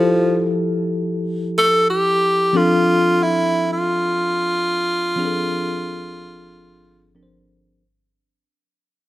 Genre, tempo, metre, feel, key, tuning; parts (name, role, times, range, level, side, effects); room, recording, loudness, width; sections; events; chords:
soul; 91 BPM; 4/4; straight; F major; A4 = 440 Hz
breathy tenor saxophone; melody; 0.0-7.1 s; F3 to A4; -17 LUFS; equal
bell-like tine electric piano; accompaniment; 0.0-7.8 s; F3 to C5; -22 LUFS; left 1 dB; medium stereo tremolo
light reverb; faint mains hum; -16 LUFS; side -16 dB against mid
0.0-2.5 A section; 2.5-7.8 B section
fade-out 2.5-7.8
0.0 Fmaj9; 2.5 F6